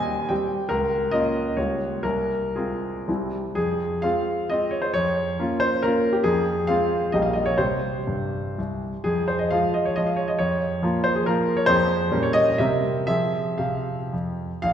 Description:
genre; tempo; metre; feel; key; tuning
classical, romantic triple-time dance for piano with dotted rhythms; 110-155 BPM; 3/4; rubato; F minor; A4 = 440 Hz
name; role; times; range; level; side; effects
clear grand piano; solo; 0.0-14.7 s; Bb1 to Ab5; -21 LUFS; equal; none
room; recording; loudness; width
wet concert hall reverb, RT60 1.8 s; recorded in a church or concert hall; -21 LUFS; side -9 dB against mid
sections
0.0-3.6 A section; 3.6-14.6 B section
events
none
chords
0.0 Cm/Eb; 0.7 Bbm/Db; 1.6 Gm7b5/Db; 2.0 Fm/C; 3.1 C; 3.6 Fm; 4.9 Bbm/F; 6.2 Fm; 7.1 Bbm6; 7.6 C5; 9.1 Fm; 10.4 Bbm/F; 11.7 Fm; 12.1 Gdim/Bb; 12.6 C7; 13.1 Fm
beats
0.31 | 0.70 1.12 1.58 | 2.05 2.57 3.08 | 3.57 4.04 4.50 | 4.94 5.40 5.84 | 6.25 6.68 7.13 | 7.58 8.07 8.58 | 9.05 9.52 9.98 | 10.40 10.83 11.26 | 11.68 12.11 12.59 | 13.07 13.59 14.12 | 14.64

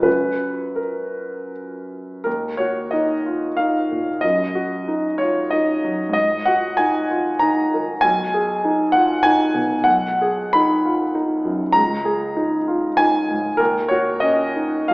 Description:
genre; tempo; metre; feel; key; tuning
classical, romantic character piece for solo piano; 80-103 BPM; 3/4; rubato; Eb minor; A4 = 440 Hz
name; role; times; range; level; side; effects
clear concert grand piano; solo; 0.0-14.9 s; Cb2 to B5; -17 LUFS; equal; none
room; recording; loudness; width
wet recital hall reverb, RT60 1.4 s; heard from further back in the room, AM radio sound; -17 LUFS; side -25 dB against mid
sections
0.0-2.3 A section; 2.3-14.9 B section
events
none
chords
0.1 F#; 2.3 Ebm; 4.2 Ebm/Gb; 6.1 Ab5; 8.0 Abm/Cb; 11.7 C#add9; 13.6 D#m7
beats
| 0.06 0.79 1.53 | 2.26 2.93 3.59 | 4.22 4.87 5.51 | 6.14 6.78 7.41 | 8.03 8.64 9.25 | 9.87 10.55 11.15 | 11.74 12.36 12.99 | 13.60 14.23 14.90

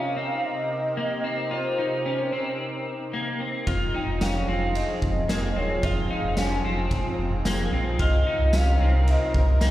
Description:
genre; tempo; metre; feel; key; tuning
dream pop; 111 BPM; 4/4; straight; unclear; A4 = 445 Hz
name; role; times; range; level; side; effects
warbly nostalgic lead; melody; 0.0-9.7 s; C5 to Ab5; -29 LUFS; equal; chorus, tremolo, digital delay
warm analog pad; sustained chords; 0.0-9.7 s; C3 to Bb4; -31 LUFS; equal; chorus
electric guitar at the edge of break-up; arpeggios; 0.0-9.7 s; Bb3 to F4; -30 LUFS; left 2 dB; lush chorus, digital delay
sub bass with octave; bass; 3.7-9.7 s; Eb1 to C2; -24 LUFS; equal; none
oversized low-tuned drum kit; drums; 3.7-9.7 s; kick drum, ride cymbal, snare drum, tambourine; -28 LUFS; equal; none
room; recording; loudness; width
moderate scoring stage reverb, RT60 2.1 s; played on a big sound system in a bare room, stone room reverb; -22 LUFS; side -14 dB against mid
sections
0.0-9.7 A section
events
none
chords
0.0 Cm7; 3.7 Fm7; 8.0 Cm7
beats
0.43 0.97 | 1.51 2.05 2.59 3.13 | 3.67 4.21 4.75 5.29 | 5.83 6.37 6.91 7.46 | 8.00 8.54 9.08 9.62

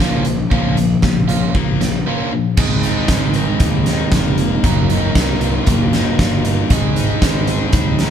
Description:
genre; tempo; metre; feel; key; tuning
indie rock; 116 BPM; 4/4; straight; unclear; A4 = 440 Hz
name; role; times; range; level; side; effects
crunchy overdriven guitar; riff; 0.0-8.1 s; Bb2 to C5; -20 LUFS; left 7 dB; none
overdriven electric guitar; riff; 0.0-8.1 s; Ab2 to Bb4; -22 LUFS; right 7 dB; none
fuzz fingered electric bass; bass; 0.0-8.1 s; F1 to Eb2; -22 LUFS; equal; overdrive
big rock drum kit; drums; 0.0-8.1 s; crash cymbal, hi-hat, kick drum, snare drum; -16 LUFS; right 1 dB; none
room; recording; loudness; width
light reverb; band playing live in one room; -13 LUFS; side -8 dB against mid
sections
0.0-2.6 A section; 2.6-8.1 B section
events
none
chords
0.0 Bbm; 2.6 Abadd9; 4.6 Ebmadd9/Gb; 6.7 Ab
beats
0.00 | 0.51 1.03 1.55 2.06 | 2.58 3.10 3.61 4.13 | 4.64 5.16 5.67 6.19 | 6.71 7.22 7.74

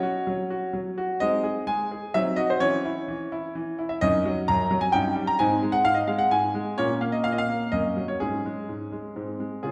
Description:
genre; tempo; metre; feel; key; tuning
classical-period piano sonatina; 129 BPM; 3/4; straight; C# minor; A4 = 440 Hz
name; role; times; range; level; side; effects
clear grand piano; solo; 0.0-9.7 s; Gb2 to Bb5; -26 LUFS; equal; none
room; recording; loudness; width
wet recital hall reverb, RT60 1.5 s; none; -26 LUFS; mono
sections
0.0-9.6 A section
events
none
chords
0.0 F#5; 1.2 G#; 2.1 Cdim/Gb; 2.6 C#m/E; 4.0 Ebm7/Gb; 4.9 Eb7/G; 5.4 Ab; 6.8 Bbm; 7.7 Gb; 8.2 Db5/Ab; 9.2 Ab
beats
0.28 0.74 | 1.21 1.68 2.14 | 2.60 3.07 3.53 | 4.00 4.46 4.92 | 5.39 5.85 6.31 | 6.78 7.25 7.72 | 8.20 8.69 9.17 | 9.65

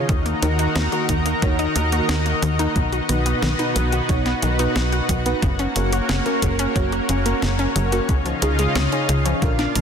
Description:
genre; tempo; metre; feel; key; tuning
synthwave; 90 BPM; 4/4; straight; Eb minor; A4 = 438 Hz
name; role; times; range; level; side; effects
analog string pad; sustained chords; 0.0-9.8 s; Db3 to Bb4; -23 LUFS; left 1 dB; ensemble chorus, sidechain pumping
FM electric piano with soft pad layer; stabs; 0.0-9.6 s; Bb2 to F5; -26 LUFS; right 2 dB; chorus, digital delay
wide unison pluck; arpeggios; 0.1-9.8 s; Db3 to Gb4; -27 LUFS; left 2 dB; digital delay
tight sequencer bass; bass; 0.1-9.8 s; Gb1 to Eb2; -22 LUFS; equal; tube saturation, sidechain pumping
clean 12-bit digital drum machine; drums; 0.1-9.8 s; hi-hat, snare drum; -27 LUFS; equal; overdrive
electronic kick drum; drums; 0.1-9.6 s; none; -22 LUFS; equal; overdrive
room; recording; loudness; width
light reverb; dense, heavily limited modern master; -18 LUFS; side -7 dB against mid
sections
0.0-9.8 A section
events
none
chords
0.1 Ebm; 2.8 B; 5.4 Gb; 8.1 Dbadd9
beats
| 0.09 0.76 1.42 2.09 | 2.76 3.42 4.09 4.76 | 5.42 6.09 6.76 7.42 | 8.09 8.76 9.42

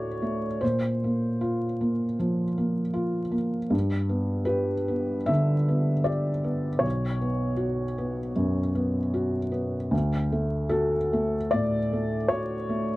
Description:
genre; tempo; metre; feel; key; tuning
neoclassical minimalist piano; 77 BPM; 4/4; rubato; unclear; A4 = 440 Hz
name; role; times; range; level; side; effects
felt-muted upright piano; solo; 0.0-13.0 s; B1 to E5; -24 LUFS; equal; none
room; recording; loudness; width
light reverb; dark, warm production, vinyl crackle; -24 LUFS; side -18 dB against mid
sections
0.0-13.0 A section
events
none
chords
0.0 D; 0.6 Bbsus2; 3.7 G; 6.9 Bsus2; 9.9 D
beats
| 0.62 1.41 2.20 2.96 | 3.73 4.51 5.34 6.10 | 6.85 7.61 8.37 9.14 | 9.92 10.71 11.54 12.31

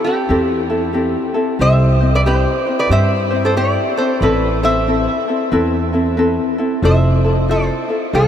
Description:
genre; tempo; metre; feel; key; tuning
Hawaiian; 92 BPM; 4/4; swing 63% on 8ths; unclear; A4 = 440 Hz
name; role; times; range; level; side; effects
lap resonator guitar; melody; 0.0-8.3 s; E4 to E5; -18 LUFS; equal; tape echo
ukulele; accompaniment; 0.0-8.3 s; C4 to C5; -18 LUFS; left 2 dB; none
upright bass; bass; 0.3-8.3 s; F1 to G2; -17 LUFS; right 1 dB; none
room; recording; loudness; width
wet huge ambient reverb, RT60 7.7 s; in a vast, echoing space; -13 LUFS; side -9 dB against mid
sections
0.0-8.3 A section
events
none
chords
0.0 Am7; 1.6 C; 4.2 Amadd9; 6.8 Fmaj7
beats
0.29 0.94 | 1.59 2.25 2.90 3.56 | 4.21 4.87 5.52 6.18 | 6.83 7.49 8.14

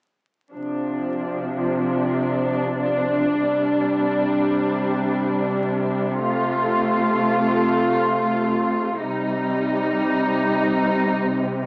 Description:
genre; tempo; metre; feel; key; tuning
trip hop; free time; none; none; D phrygian; A4 = 441 Hz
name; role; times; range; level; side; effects
muted studio string section; sustained chords; 0.5-11.7 s; C3 to F4; -19 LUFS; equal; vintage 12-bit sampler grit, low-pass filter, cassette tape
room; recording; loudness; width
moderate spring reverb, RT60 1.9 s; home recording on cassette, vinyl crackle, small speaker sound; -19 LUFS; side -38 dB against mid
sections
0.5-11.7 A section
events
none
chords
0.5 Dm7; 3.4 Csus2; 6.2 F; 9.0 Eb6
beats
free time

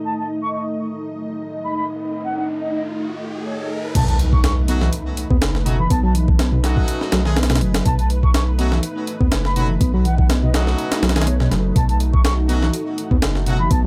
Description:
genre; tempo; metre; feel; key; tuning
breakbeat, breaks; 123 BPM; 4/4; swing 54% on 16ths; unclear; A4 = 444 Hz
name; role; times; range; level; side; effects
mellow wooden flute; melody; 0.0-13.9 s; C#5 to C#6; -29 LUFS; equal; telephone sound, digital delay
lush unison pad; sustained chords; 0.0-13.9 s; A3 to D#5; -30 LUFS; equal; chorus, phaser, sidechain pumping
riser and impact; sound effects; 2.1-5.9 s; none; -31 LUFS; equal; none
bright reed electric piano; riff; 4.0-13.9 s; B2 to B3; -25 LUFS; equal; digital delay
saturated sub bass; bass; 4.0-13.9 s; F#1 to D#2; -22 LUFS; equal; none
breakbeat sampler-style drum kit; drums; 4.0-13.8 s; crash cymbal, hi-hat, kick drum, snare drum; -22 LUFS; equal; none
bright horn section; stabs; 4.7-13.6 s; F#3 to G#4; -30 LUFS; equal; digital delay
room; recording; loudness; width
light reverb; none; -19 LUFS; mono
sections
0.0-4.0 A section; 4.0-13.9 B section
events
filter sweep on analog synth pad 0.0-4.0; riser 2.1-4.0; drop 4.0-13.9; impact 4.0-5.9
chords
0.0 B7 (rootless); 4.0 B7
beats
| 0.05 0.54 1.03 1.51 | 2.00 2.49 2.98 3.47 | 3.95 4.44 4.93 5.42 | 5.91 6.39 6.88 7.37 | 7.86 8.34 8.83 9.32 | 9.81 10.29 10.78 11.27 | 11.76 12.25 12.73 13.22 | 13.71

